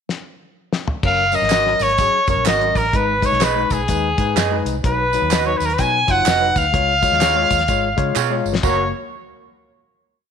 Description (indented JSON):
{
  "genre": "uptempo 1960s-style soul",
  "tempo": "126 BPM",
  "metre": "4/4",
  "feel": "swing 62% on 8ths",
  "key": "F# major",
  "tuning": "A4 = 440 Hz",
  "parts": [
    { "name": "cloth-damped thuddy drum kit", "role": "drums", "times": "0.1-8.8 s", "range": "crash cymbal, hi-hat, kick drum, snare drum, splash cymbal, toms", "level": "-22 LUFS", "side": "left 2 dB", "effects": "none" },
    { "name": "overdriven tine electric piano", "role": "accompaniment", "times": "1.0-8.9 s", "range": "F#3 to C#5", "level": "-25 LUFS", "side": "left 11 dB", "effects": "none" },
    { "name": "vintage muted fingered electric bass", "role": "bass", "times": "1.0-8.9 s", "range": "E#1 to C#3", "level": "-24 LUFS", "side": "right 2 dB", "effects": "none" },
    { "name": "bright trumpet", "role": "melody", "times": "1.1-8.9 s", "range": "G#4 to G#5", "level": "-18 LUFS", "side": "equal", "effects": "slapback echo" },
    { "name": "tambourine and handclaps", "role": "percussion", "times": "1.3-8.9 s", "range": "none", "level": "-29 LUFS", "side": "right 16 dB", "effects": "none" },
    { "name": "electric guitar through a small old amp", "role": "stabs", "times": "1.5-8.8 s", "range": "C#4 to D#5", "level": "-25 LUFS", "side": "right 14 dB", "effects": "none" }
  ],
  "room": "light reverb, small room ambience",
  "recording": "1960s-style stereo with parts hard left and right",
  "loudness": "-15 LUFS",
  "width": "side -7 dB against mid",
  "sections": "0.0-1.0 pickup bar; 1.0-8.6 verse; 8.6-10.3 final chord",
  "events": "drum fill 0.1-1.0, 8.2-8.6",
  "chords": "0.0 N.C.; 1.0 F#; 2.9 G#m; 4.8 B; 6.7 C#; 8.6 F#",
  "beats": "0.09 0.56 | 1.04 1.51 1.99 2.46 | 2.94 3.41 3.89 4.36 | 4.84 5.32 5.79 6.26 | 6.74 7.21 7.69 8.16 | 8.63"
}